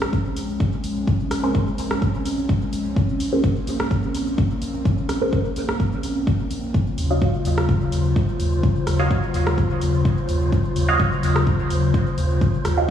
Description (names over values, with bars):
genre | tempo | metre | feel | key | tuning
dub techno | 127 BPM | 4/4 | straight | Bb minor | A4 = 440 Hz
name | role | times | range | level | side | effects
airy breathy pad | sustained chords | 0.0-12.9 s | Db3 to F4 | -24 LUFS | left 1 dB | chorus, sidechain pumping
soft dub sub bass | bass | 0.0-12.9 s | Bb1 to Eb2 | -25 LUFS | right 1 dB | sidechain pumping
deep house drum kit | drums | 0.0-12.9 s | cabasa, hi-hat, rim click | -31 LUFS | equal | dub echo
electronic kick drum | drums | 0.1-12.5 s | none | -21 LUFS | equal | none
filtered dub chord stab | stabs | 1.4-12.9 s | Db4 to F5 | -26 LUFS | right 1 dB | phaser, dub echo
wind-like tuned noise texture | texture | 7.4-12.9 s | C5 | -34 LUFS | equal | built-in reverb, sidechain pumping
room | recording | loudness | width
light reverb | played on a big sound system in a bare room, stone room reverb, vinyl crackle, small room reverb | -19 LUFS | side -9 dB against mid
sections
0.0-12.9 A section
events
none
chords
0.0 Bbm9; 6.7 Ebm9